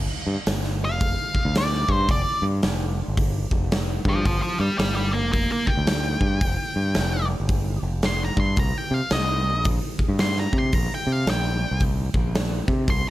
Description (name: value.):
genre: blues rock power trio and southern rock.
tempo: 111 BPM.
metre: 4/4.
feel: swing 62% on 8ths.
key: G minor.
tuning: A4 = 441 Hz.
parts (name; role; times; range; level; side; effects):
growling fingered electric bass; bass; 0.0-13.0 s; F1 to C3; -24 LUFS; equal; overdrive.
big rock drum kit; drums; 0.5-13.0 s; hi-hat, kick drum, snare drum; -24 LUFS; equal; none.
octave-fuzz lead guitar; melody; 0.8-13.1 s; C5 to C6; -26 LUFS; equal; distortion, plate reverb.
room: light reverb.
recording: none.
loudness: -20 LUFS.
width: side -16 dB against mid.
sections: 0.0-13.1 A section.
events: lead electric guitar solo 0.0-13.1.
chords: 0.0 G5; 8.6 C7(no3).